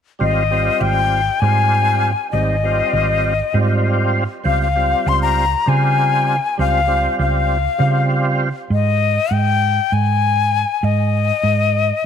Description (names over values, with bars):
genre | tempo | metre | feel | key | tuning
progressive instrumental, band music in an uneven meter | 198 BPM (eighths) | 7/8 | straight | unclear | A4 = 439 Hz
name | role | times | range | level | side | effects
breathy bright jazz flute | melody | 0.2-12.1 s | Eb5 to C6 | -18 LUFS | left 7 dB | none
overdriven tonewheel organ | accompaniment | 0.2-8.5 s | G3 to F4 | -22 LUFS | right 3 dB | chorus vibrato, slow rotary speaker
hollow-body short-scale fingered electric bass | bass | 0.2-11.9 s | Ab1 to Db3 | -18 LUFS | right 2 dB | none
room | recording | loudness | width
light reverb, studio reverb | none | -14 LUFS | side -8 dB against mid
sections
0.2-8.7 A section; 8.7-12.1 B section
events
none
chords
0.2 Abmaj7; 4.5 Db; 8.7 Ab5